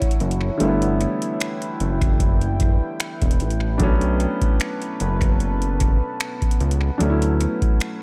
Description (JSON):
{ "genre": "contemporary R&B", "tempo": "75 BPM", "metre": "4/4", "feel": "swing 54% on 16ths", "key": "unclear", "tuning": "A4 = 440 Hz", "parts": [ { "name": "warm concert grand piano", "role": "accompaniment", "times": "0.0-8.0 s", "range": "D3 to E4", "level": "-28 LUFS", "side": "equal", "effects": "none" }, { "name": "deep dark ambient pad", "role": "sustained chords", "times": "0.0-8.0 s", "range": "B3 to A5", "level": "-32 LUFS", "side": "equal", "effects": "chorus, built-in reverb" }, { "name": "booming analog drum machine", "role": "drums", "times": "0.0-8.0 s", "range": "finger snaps, hi-hat, kick drum", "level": "-23 LUFS", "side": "equal", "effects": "tape echo" }, { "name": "fat analog bass", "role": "bass", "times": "0.2-7.5 s", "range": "E1 to D2", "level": "-24 LUFS", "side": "equal", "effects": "none" } ], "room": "little or no reverb", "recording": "echo-heavy mix", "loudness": "-21 LUFS", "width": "mono", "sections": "0.0-8.0 A section", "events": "none", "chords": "0.0 Dmaj9; 0.6 G6; 3.8 Bm7; 7.0 Dmaj7" }